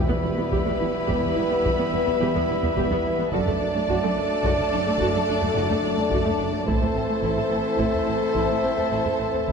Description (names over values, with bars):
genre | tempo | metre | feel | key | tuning
cinematic, epic orchestral film score | 71 BPM (dotted quarters) | 12/8 | straight | E minor | A4 = 440 Hz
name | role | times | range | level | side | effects
warm symphonic violin section | melody | 0.0-9.5 s | A5 to B5 | -32 LUFS | left 5 dB | none
warm symphonic violin section | second line | 0.0-9.5 s | B4 to D5 | -30 LUFS | left 1 dB | none
bright trombone section | sustained chords | 0.0-9.5 s | E3 to A3 | -31 LUFS | right 1 dB | none
clear studio string section | sustained chords | 0.0-9.5 s | A3 to D5 | -32 LUFS | left 1 dB | none
warm French horn section | sustained chords | 0.0-9.5 s | B3 to B4 | -28 LUFS | left 5 dB | none
warm trumpet | stabs | 0.0-9.5 s | D5 to E5 | -30 LUFS | right 5 dB | none
timpani | percussion | 0.0-0.8 s | E2 | -34 LUFS | left 1 dB | none
rich symphonic viola section | accompaniment | 0.1-9.5 s | A3 to G4 | -30 LUFS | right 1 dB | none
rich symphonic cello section | bass | 0.1-9.5 s | E2 to A2 | -31 LUFS | right 4 dB | none
taiko ensemble | drums | 0.1-9.5 s | none | -30 LUFS | equal | none
rich symphonic double bass section | bass | 0.2-9.5 s | E1 to A1 | -32 LUFS | right 4 dB | none
room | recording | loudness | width
moderate scoring stage reverb, RT60 1.9 s | none | -20 LUFS | side -6 dB against mid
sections
0.0-9.5 A section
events
none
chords
0.0 Em; 3.3 D/F#; 6.7 Am